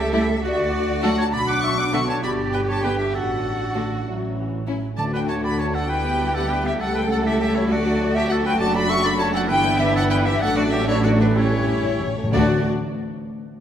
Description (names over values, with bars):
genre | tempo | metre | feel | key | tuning
quick classical-period movement for symphony orchestra | 66 BPM (dotted quarters) | 6/8 | straight | D major | A4 = 442 Hz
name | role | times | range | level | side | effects
rich chamber violin section | melody | 0.0-12.7 s | B4 to D6 | -27 LUFS | left 3 dB | none
clear oboe | second line | 0.0-12.6 s | D4 to F#5 | -29 LUFS | right 1 dB | none
flute section | second line | 0.0-12.7 s | F#4 to D6 | -28 LUFS | equal | none
warm French horn section | sustained chords | 0.0-12.6 s | E3 to G4 | -27 LUFS | left 2 dB | none
warm chamber double bass section | bass | 0.0-12.7 s | F#1 to D2 | -26 LUFS | right 3 dB | none
warm symphonic cello section | bass | 0.0-12.7 s | D2 to A4 | -28 LUFS | right 3 dB | none
warm chamber violin section | second line | 0.1-12.7 s | G3 to A4 | -30 LUFS | left 2 dB | none
warm chamber viola section | accompaniment | 0.1-12.7 s | D3 to B3 | -26 LUFS | equal | none
timpani | percussion | 5.0-5.9, 11.4-12.6 s | A2 to D3 | -27 LUFS | left 2 dB | none
room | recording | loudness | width
wet concert hall reverb, RT60 2.1 s | none | -18 LUFS | side -9 dB against mid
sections
0.0-12.3 A section; 12.3-13.6 B section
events
timpani fill 11.4-12.3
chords
0.4 D; 1.3 Bm; 2.2 G; 3.1 D/A; 4.1 A; 5.0 D; 5.9 Em7/D; 6.8 A7/C#; 7.7 D; 8.6 D/F#; 9.5 Em7/G; 10.4 D/A; 11.4 A7; 12.3 D